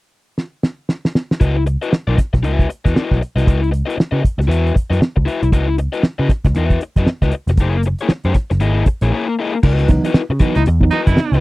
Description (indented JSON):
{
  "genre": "funk",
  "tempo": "117 BPM",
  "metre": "4/4",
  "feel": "swing 60% on 16ths",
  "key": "C# dorian",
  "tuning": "A4 = 438 Hz",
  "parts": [
    { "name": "cloth-damped thuddy drum kit", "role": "drums", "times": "0.4-11.4 s", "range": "crash cymbal, hi-hat, kick drum, snare drum", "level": "-14 LUFS", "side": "equal", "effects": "none" },
    { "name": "crunchy overdriven guitar", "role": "accompaniment", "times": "1.4-11.4 s", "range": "A#3 to E5", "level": "-20 LUFS", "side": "left 5 dB", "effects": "none" },
    { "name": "vintage muted picked electric bass", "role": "bass", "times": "1.4-11.4 s", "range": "E#1 to C#3", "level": "-16 LUFS", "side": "equal", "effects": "none" },
    { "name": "mellow tine electric piano", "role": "stabs", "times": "9.6-11.4 s", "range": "C#3 to D#4", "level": "-20 LUFS", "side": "right 3 dB", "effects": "medium stereo tremolo, tube saturation" },
    { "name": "clear baritone saxophone", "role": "second line", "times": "10.6-11.4 s", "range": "D#4 to E4", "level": "-21 LUFS", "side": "right 6 dB", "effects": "none" }
  ],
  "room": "little or no reverb",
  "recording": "dry, close 1970s-style studio recording",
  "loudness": "-14 LUFS",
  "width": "side -20 dB against mid",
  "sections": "0.0-1.4 A section; 1.4-9.6 B section; 9.6-11.4 C section",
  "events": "drum fill 0.4-1.4; break 9.1-9.6",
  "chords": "0.0 N.C.; 1.4 C#m11; 7.6 F#9; 9.6 C#m11",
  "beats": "0.38 0.90 | 1.41 1.92 2.44 2.95 | 3.47 3.98 4.50 5.01 | 5.52 6.04 6.55 7.07 | 7.58 8.10 8.61 9.12 | 9.64 10.15 10.66 11.18"
}